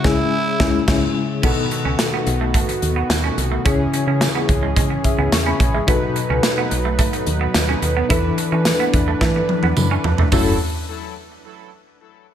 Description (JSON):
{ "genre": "1980s-style pop", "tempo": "108 BPM", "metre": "4/4", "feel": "straight", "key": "F# minor", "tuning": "A4 = 440 Hz", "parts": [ { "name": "breathy tenor saxophone", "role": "melody", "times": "0.0-1.2 s", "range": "E4", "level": "-24 LUFS", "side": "right 3 dB", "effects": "ping-pong delay" }, { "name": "FM electric piano with tremolo", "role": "accompaniment", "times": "0.0-10.6 s", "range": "F#2 to C#6", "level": "-22 LUFS", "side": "left 5 dB", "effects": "none" }, { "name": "solid FM bass", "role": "bass", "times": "0.0-10.6 s", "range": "F#1 to E3", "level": "-21 LUFS", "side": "equal", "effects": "none" }, { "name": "modern studio drum kit", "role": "drums", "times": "0.0-10.5 s", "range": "crash cymbal, hi-hat, kick drum, snare drum, tambourine, toms", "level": "-20 LUFS", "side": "equal", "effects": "gated reverb" }, { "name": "clean electric guitar", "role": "riff", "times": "1.4-10.5 s", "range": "G#3 to E4", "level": "-26 LUFS", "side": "right 8 dB", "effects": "lush chorus, ping-pong delay" }, { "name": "analog synth brass", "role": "stabs", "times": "1.4-10.6 s", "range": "D#3 to B4", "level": "-24 LUFS", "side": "right 2 dB", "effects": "chorus, ping-pong delay" }, { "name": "tambourine", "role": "percussion", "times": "2.0-10.6 s", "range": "none", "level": "-33 LUFS", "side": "right 9 dB", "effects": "none" } ], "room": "light reverb, small room reverb", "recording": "none", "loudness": "-16 LUFS", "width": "side -10 dB against mid", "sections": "0.0-1.4 A section; 1.4-10.3 B section; 10.3-12.3 C section", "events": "band accent 0.0-1.4; drum fill 9.2-10.3", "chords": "0.0 C#m; 1.4 B7; 3.7 C#m; 5.9 B7; 8.1 E7sus4; 10.3 F#m7", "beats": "0.32 0.88 | 1.43 1.99 2.54 3.10 | 3.66 4.21 4.77 5.32 | 5.88 6.43 6.99 7.54 | 8.10 8.66 9.21 9.77 | 10.32" }